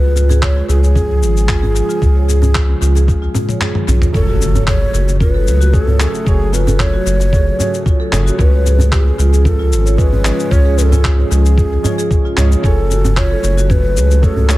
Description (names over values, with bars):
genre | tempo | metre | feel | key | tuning
organic downtempo | 113 BPM | 4/4 | straight | F# harmonic minor | A4 = 441 Hz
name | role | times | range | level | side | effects
breathy mellow ney | melody | 0.0-14.6 s | G#4 to C#5 | -21 LUFS | equal | dub echo
warbly tape-like pad | sustained chords | 0.0-14.6 s | G#2 to G#4 | -24 LUFS | equal | chorus, built-in reverb, sidechain pumping
marimba with medium mallets | arpeggios | 0.0-14.6 s | E#4 to C#5 | -24 LUFS | right 2 dB | dub echo
round analog bass | bass | 0.0-14.6 s | F#1 to C#2 | -13 LUFS | equal | tube saturation, sidechain pumping
dusty soul sampler-style drum kit | drums | 0.2-14.6 s | cabasa, handclaps, toms | -22 LUFS | left 1 dB | analog delay
djembe | percussion | 0.2-14.5 s | none | -22 LUFS | right 1 dB | analog delay
electronic kick drum | drums | 0.4-14.3 s | none | -15 LUFS | equal | none
felt-muted upright piano | accompaniment | 4.1-14.6 s | E#3 to G#5 | -27 LUFS | right 2 dB | sidechain pumping, analog delay
impact | sound effects | 4.1-6.3 s | none | -22 LUFS | equal | none
room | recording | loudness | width
studio ambience | echo-heavy mix | -11 LUFS | side -17 dB against mid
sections
0.0-4.1 A section; 4.1-14.6 B section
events
drum fill 3.3-4.1; kick drops out 3.6-4.1; impact 4.1-6.3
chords
0.0 C#; 4.1 F#madd9; 8.4 C#; 12.6 F#madd9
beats
0.42 0.96 1.49 | 2.02 2.55 3.08 3.61 | 4.14 4.67 5.20 5.74 | 6.27 6.80 7.33 7.86 | 8.39 8.92 9.45 9.98 | 10.51 11.04 11.57 12.11 | 12.64 13.17 13.70 14.23